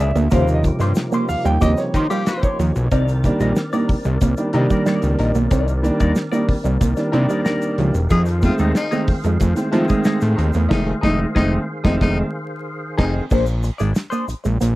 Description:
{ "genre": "funk", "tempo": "92 BPM", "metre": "4/4", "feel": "straight", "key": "unclear", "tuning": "A4 = 438 Hz", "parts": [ { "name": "clean electric guitar", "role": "accompaniment", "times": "0.0-14.6 s", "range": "A3 to Eb5", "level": "-28 LUFS", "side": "left 4 dB", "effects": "wah" }, { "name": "percussive tonewheel organ", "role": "sustained chords", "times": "0.0-13.3 s", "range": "D3 to F5", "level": "-29 LUFS", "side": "equal", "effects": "overdrive, chorus vibrato, slow rotary speaker" }, { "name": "electric guitar with an envelope filter", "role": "riff", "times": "0.0-14.7 s", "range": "F3 to C4", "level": "-22 LUFS", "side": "right 4 dB", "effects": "none" }, { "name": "dark upright piano", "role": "stabs", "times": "0.0-13.2 s", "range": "C3 to G5", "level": "-21 LUFS", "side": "right 1 dB", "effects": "none" }, { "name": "fat analog bass", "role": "bass", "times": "0.0-14.7 s", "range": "E1 to F3", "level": "-19 LUFS", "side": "equal", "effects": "none" }, { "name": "damped 70s drum kit", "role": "drums", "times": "0.0-14.8 s", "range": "crash cymbal, hi-hat, kick drum, snare drum", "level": "-20 LUFS", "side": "equal", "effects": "none" }, { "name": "egg shaker", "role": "percussion", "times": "0.2-14.8 s", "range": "none", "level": "-43 LUFS", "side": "left 3 dB", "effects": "none" }, { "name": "raspy tenor saxophone", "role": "second line", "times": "1.6-2.5, 8.1-13.1 s", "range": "Eb4 to G#4", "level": "-24 LUFS", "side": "left 3 dB", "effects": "none" } ], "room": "little or no reverb", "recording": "dry, close 1970s-style studio recording, vinyl crackle", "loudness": "-16 LUFS", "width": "side -18 dB against mid", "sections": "0.0-2.9 A section; 2.9-13.3 B section; 13.3-14.8 C section", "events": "upright piano solo 0.0-2.9; upright piano fill 6.8-8.1; band accent 10.7-13.3; break 12.0-13.3", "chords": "0.3 Eb13; 2.9 Cm9; 8.1 F7#9; 13.3 Bb9" }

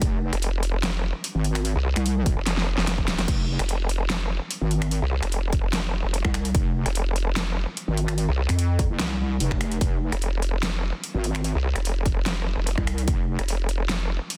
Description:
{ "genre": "heavy wobble dubstep", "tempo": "147 BPM", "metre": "4/4", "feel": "half-time", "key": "F minor", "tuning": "A4 = 440 Hz", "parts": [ { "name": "wobble bass", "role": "bass", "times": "0.0-13.4 s", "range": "F1 to F2", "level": "-26 LUFS", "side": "equal", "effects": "chorus, overdrive" }, { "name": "dubstep drum kit", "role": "drums", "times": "0.0-14.4 s", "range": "crash cymbal, finger snaps, hi-hat, snare drum", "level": "-32 LUFS", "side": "equal", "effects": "studio reverb" }, { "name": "electronic kick drum", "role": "drums", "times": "0.0-13.2 s", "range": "none", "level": "-27 LUFS", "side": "equal", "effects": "studio reverb" }, { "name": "vowel-sweep wobble bass", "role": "bass", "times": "0.3-14.2 s", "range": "F1 to C2", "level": "-27 LUFS", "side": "equal", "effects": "chorus, overdrive" } ], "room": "little or no reverb", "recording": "dense, heavily limited modern master", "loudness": "-25 LUFS", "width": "mono", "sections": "0.0-14.4 A section", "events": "drum fill 2.5-3.3", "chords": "0.0 F5" }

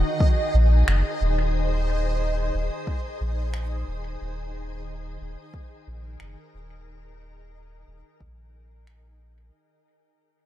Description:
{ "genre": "ambient dub", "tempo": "90 BPM", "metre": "4/4", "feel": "swing 55% on 16ths", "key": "unclear", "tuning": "A4 = 436 Hz", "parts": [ { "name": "soft additive organ-like pad", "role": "sustained chords", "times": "0.0-9.5 s", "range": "Eb3 to C5", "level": "-32 LUFS", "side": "left 2 dB", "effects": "ensemble chorus, built-in reverb" }, { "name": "soft dub sub bass", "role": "bass", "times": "0.0-9.5 s", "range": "Eb1 to Bb1", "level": "-23 LUFS", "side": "equal", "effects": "none" }, { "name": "backwards swelling texture", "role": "texture", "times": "0.0-9.5 s", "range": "Eb5", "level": "-32 LUFS", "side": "right 3 dB", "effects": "built-in reverb" }, { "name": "electronic kick drum", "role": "drums", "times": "0.2-8.3 s", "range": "none", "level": "-22 LUFS", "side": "equal", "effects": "overdrive" }, { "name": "finger snaps", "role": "drums", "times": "0.9-9.0 s", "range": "none", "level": "-32 LUFS", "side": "equal", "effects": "dub echo" } ], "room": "small room ambience", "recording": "none", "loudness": "-22 LUFS", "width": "side -13 dB against mid", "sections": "0.0-9.5 A section", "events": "fade-out 0.0-9.5", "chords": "0.0 Ab/Eb" }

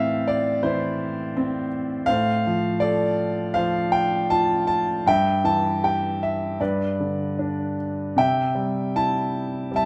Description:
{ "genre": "classical, lyrical solo piano", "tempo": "75-84 BPM", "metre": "4/4", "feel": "rubato", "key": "unclear", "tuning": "A4 = 439 Hz", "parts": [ { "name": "warm concert grand piano", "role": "solo", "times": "0.0-9.9 s", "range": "G2 to A5", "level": "-23 LUFS", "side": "equal", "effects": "none" } ], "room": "moderate recital hall reverb, RT60 1.5 s", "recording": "none", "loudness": "-23 LUFS", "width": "mono", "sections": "0.0-9.9 A section", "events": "none", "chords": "0.0 Am; 2.1 Dm7/A; 5.1 Emadd11/G; 6.6 G; 8.2 C6" }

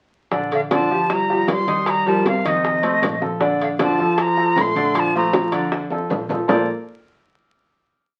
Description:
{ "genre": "Afro-Cuban jazz", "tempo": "156 BPM", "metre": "4/4", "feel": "straight", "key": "Bb major", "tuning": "A4 = 436 Hz", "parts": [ { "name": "clear grand piano", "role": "accompaniment", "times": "0.3-6.7 s", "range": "D3 to Eb5", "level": "-24 LUFS", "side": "equal", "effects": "none" }, { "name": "upright bass", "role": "bass", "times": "0.3-6.7 s", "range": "G1 to F2", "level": "-36 LUFS", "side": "equal", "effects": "none" }, { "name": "bongos", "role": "percussion", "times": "0.3-6.6 s", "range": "none", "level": "-29 LUFS", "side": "equal", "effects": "none" }, { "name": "congas", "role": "percussion", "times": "0.3-6.6 s", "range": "none", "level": "-30 LUFS", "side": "equal", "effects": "none" }, { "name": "silver concert flute", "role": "melody", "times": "0.5-5.7 s", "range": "Eb5 to C6", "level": "-23 LUFS", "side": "equal", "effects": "none" }, { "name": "warm tenor saxophone", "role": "second line", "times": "0.5-5.7 s", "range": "C3 to A3", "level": "-26 LUFS", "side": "equal", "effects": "none" }, { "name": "timbales", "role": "percussion", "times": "0.5-6.6 s", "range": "none", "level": "-30 LUFS", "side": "equal", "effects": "none" } ], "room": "wet studio ambience, RT60 0.5 s", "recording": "very old 78 rpm record, vinyl crackle", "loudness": "-19 LUFS", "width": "mono", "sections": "0.3-6.5 A section; 6.5-8.0 final chord", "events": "drum fill 5.9-6.5", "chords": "0.3 Bbmaj7; 1.1 Gm7; 1.9 Cm7; 2.6 F7; 3.4 Bbmaj7; 6.5 Bbmaj9" }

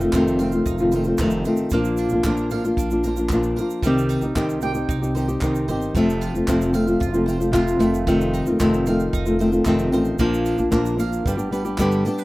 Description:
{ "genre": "acoustic pop", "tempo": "113 BPM", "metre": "4/4", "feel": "straight", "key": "unclear", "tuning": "A4 = 440 Hz", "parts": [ { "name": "flamenco guitar", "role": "accompaniment", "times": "0.0-12.2 s", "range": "F2 to G4", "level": "-19 LUFS", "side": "left 1 dB", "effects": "none" }, { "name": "mandolin", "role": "arpeggios", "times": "0.0-12.2 s", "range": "G3 to G5", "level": "-33 LUFS", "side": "right 8 dB", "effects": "none" }, { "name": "upright bass", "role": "bass", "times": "0.0-12.0 s", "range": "F1 to C2", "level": "-28 LUFS", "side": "right 1 dB", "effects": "none" }, { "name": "tube shaker", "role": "percussion", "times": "0.0-12.2 s", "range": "none", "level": "-42 LUFS", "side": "right 8 dB", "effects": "none" }, { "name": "compact cocktail drum kit", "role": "drums", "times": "0.1-12.2 s", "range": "handclaps, kick drum, tambourine", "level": "-28 LUFS", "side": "right 1 dB", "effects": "none" } ], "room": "light reverb", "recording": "rough home demo mix", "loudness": "-18 LUFS", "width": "side -19 dB against mid", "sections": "0.0-12.2 A section", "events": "none", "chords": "0.0 F7; 1.7 Bb; 3.8 Cm; 6.0 F; 7.8 F7; 10.2 Bb; 11.3 G" }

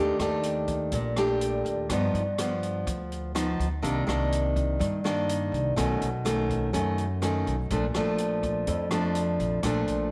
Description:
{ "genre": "bossa nova", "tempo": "124 BPM", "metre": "4/4", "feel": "straight", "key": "Bb major", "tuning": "A4 = 441 Hz", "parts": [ { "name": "nylon-string guitar", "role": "accompaniment", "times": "0.0-10.1 s", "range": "F2 to G4", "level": "-29 LUFS", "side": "equal", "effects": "none" }, { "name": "upright bass", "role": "bass", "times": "0.0-10.1 s", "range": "Bb1 to G2", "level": "-34 LUFS", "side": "equal", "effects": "none" }, { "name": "open jazz drum kit", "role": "drums", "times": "0.2-10.0 s", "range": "hi-hat, kick drum, rim click", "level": "-39 LUFS", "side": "equal", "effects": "none" } ], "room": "moderate echo chamber reverb, RT60 1.4 s, studio reverb", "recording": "none", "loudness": "-27 LUFS", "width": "mono", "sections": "0.0-10.1 A section", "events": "none", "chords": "0.0 Ebmaj7#11; 1.9 G7b13; 3.8 Cm9; 5.8 B9; 7.7 Bbmaj7" }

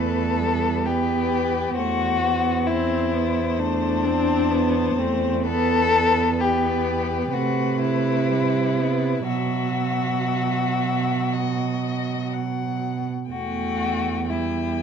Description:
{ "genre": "classical, slow romantic movement for string quartet", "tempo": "56-67 BPM", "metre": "4/4", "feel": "rubato", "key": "E minor", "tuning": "A4 = 444 Hz", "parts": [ { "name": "muted violin", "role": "melody", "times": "0.0-14.8 s", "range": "B4 to G5", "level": "-30 LUFS", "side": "left 8 dB", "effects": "none" }, { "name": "muted violin", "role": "second line", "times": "0.0-14.8 s", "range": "C4 to A4", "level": "-24 LUFS", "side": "left 6 dB", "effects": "none" }, { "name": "muted viola", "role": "accompaniment", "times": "0.0-14.8 s", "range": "F#3 to C4", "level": "-29 LUFS", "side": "right 2 dB", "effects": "none" }, { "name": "muted cello", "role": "bass", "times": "0.0-14.8 s", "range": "E2 to C3", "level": "-24 LUFS", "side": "right 5 dB", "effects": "none" } ], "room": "light reverb", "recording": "dark, warm production", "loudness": "-20 LUFS", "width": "side -7 dB against mid", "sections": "0.0-14.8 A section", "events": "none", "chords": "0.0 Em; 1.8 D13/E; 5.5 Em; 7.3 Cmaj7; 9.3 Bsus4; 13.3 Em" }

